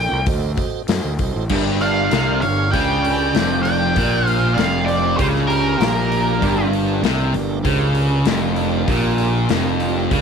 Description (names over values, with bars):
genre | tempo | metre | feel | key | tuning
blues rock power trio and southern rock | 98 BPM | 4/4 | straight | G minor | A4 = 440 Hz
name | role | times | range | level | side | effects
octave-fuzz lead guitar | melody | 0.0-6.7 s | Bb4 to G5 | -22 LUFS | equal | wah, distortion, slapback echo
tonewheel organ | sustained chords | 0.0-10.2 s | D4 to F5 | -28 LUFS | right 13 dB | slow rotary speaker
fuzz fingered electric bass | bass | 0.0-10.2 s | F1 to F#2 | -22 LUFS | equal | overdrive
big rock drum kit | drums | 0.3-10.2 s | crash cymbal, hi-hat, kick drum, snare drum | -24 LUFS | left 4 dB | none
thick fuzz guitar | riff | 1.5-10.2 s | F2 to C#3 | -19 LUFS | equal | distortion
dark smooth lead guitar | second line | 1.8-6.7 s | G4 to D5 | -27 LUFS | right 14 dB | overdrive
room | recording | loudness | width
light reverb, small room ambience | 1960s-style stereo | -16 LUFS | side -6 dB against mid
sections
0.0-1.5 A section; 1.5-10.2 B section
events
lead electric guitar solo 0.0-1.5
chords
0.3 D7b9; 1.5 Gm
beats
0.27 0.88 | 1.50 2.11 2.73 3.34 | 3.96 4.58 5.19 5.81 | 6.42 7.04 7.65 8.26 | 8.88 9.49 10.11